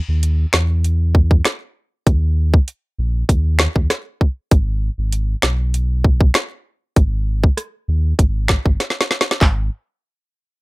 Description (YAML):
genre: dancehall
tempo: 98 BPM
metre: 4/4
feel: straight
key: G# minor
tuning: A4 = 440 Hz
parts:
  - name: sub bass with octave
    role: bass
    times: 0.1-9.7 s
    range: G#1 to E2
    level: -17 LUFS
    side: equal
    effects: none
  - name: island pop drum kit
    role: drums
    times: 0.2-9.6 s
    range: finger snaps, handclaps, hi-hat, kick drum, rim click, snare drum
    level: -14 LUFS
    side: equal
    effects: none
room: little or no reverb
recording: none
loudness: -15 LUFS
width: side -24 dB against mid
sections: 0.0-9.4 A section; 9.4-10.6 B section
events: drum fill 8.8-9.4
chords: none